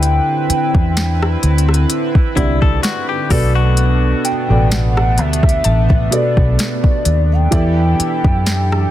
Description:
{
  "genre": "contemporary R&B",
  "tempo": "64 BPM",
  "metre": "4/4",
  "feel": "swing 54% on 16ths",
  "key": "unclear",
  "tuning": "A4 = 441 Hz",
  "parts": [
    { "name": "gliding portamento lead", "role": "melody", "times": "0.0-8.9 s", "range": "D5 to G5", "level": "-21 LUFS", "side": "equal", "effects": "chorus, ping-pong delay" },
    { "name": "felt-muted upright piano", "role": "accompaniment", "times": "0.0-8.9 s", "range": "B2 to D5", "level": "-21 LUFS", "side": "right 1 dB", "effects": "none" },
    { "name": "chorused pulse-width pad", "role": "sustained chords", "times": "0.0-8.9 s", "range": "D3 to B4", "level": "-22 LUFS", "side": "right 1 dB", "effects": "none" },
    { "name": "vintage muted fingered electric bass", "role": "bass", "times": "0.0-8.8 s", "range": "A1 to F#2", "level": "-15 LUFS", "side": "equal", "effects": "none" },
    { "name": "smooth R&B drum kit", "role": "drums", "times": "0.0-8.9 s", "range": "hi-hat, kick drum, rim click, snare drum", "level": "-16 LUFS", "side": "equal", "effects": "overdrive" },
    { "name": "direct-recorded clean electric guitar", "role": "arpeggios", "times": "2.4-4.9 s", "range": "E4 to A4", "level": "-22 LUFS", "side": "left 9 dB", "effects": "ping-pong delay" },
    { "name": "mallet-like synth pluck", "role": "texture", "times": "2.4-7.5 s", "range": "F#5 to A5", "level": "-34 LUFS", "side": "left 4 dB", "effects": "none" }
  ],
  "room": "digital ambience",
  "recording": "dense, heavily limited modern master",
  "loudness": "-12 LUFS",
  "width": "side -13 dB against mid",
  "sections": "0.0-8.9 A section",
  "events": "none",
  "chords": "0.0 D9sus4; 3.3 Bm7; 7.5 Em11"
}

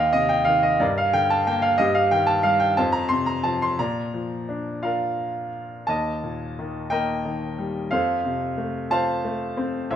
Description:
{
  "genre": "classical, lyrical solo piano",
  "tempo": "59 BPM (dotted quarters)",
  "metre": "6/8",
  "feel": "uneven beats, rubato",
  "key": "unclear",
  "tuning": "A4 = 439 Hz",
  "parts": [
    { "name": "warm baby grand piano", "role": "solo", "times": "0.0-10.0 s", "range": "C2 to C6", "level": "-21 LUFS", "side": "equal", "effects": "none" }
  ],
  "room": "moderate recital hall reverb, RT60 1.4 s",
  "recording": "minimal, uncompressed stereo recording",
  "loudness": "-21 LUFS",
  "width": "side -10 dB against mid",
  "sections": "0.0-5.9 A section; 5.9-10.0 B section",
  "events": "none",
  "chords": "0.0 Cm/Eb; 0.8 Gm; 1.8 Eb/G; 2.8 F5; 3.8 Bb; 5.9 Eb; 7.9 F"
}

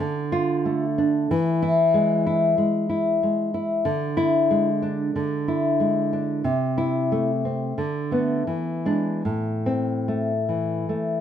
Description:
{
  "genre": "romantic piece for solo classical guitar",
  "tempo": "73-96 BPM",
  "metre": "4/4",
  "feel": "rubato",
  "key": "unclear",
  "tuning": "A4 = 440 Hz",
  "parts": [
    { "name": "nylon-string guitar", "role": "solo", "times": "0.0-11.2 s", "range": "A2 to F4", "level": "-21 LUFS", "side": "left 1 dB", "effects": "none" }
  ],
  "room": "moderate studio reverb, RT60 0.7 s",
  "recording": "none",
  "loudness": "-21 LUFS",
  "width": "side -9 dB against mid",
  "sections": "0.0-11.2 A section",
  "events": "none",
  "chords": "0.0 Dm; 1.3 E; 3.8 E7/D; 6.4 Am/C; 7.8 Bm7/D; 8.5 E7; 9.2 Am"
}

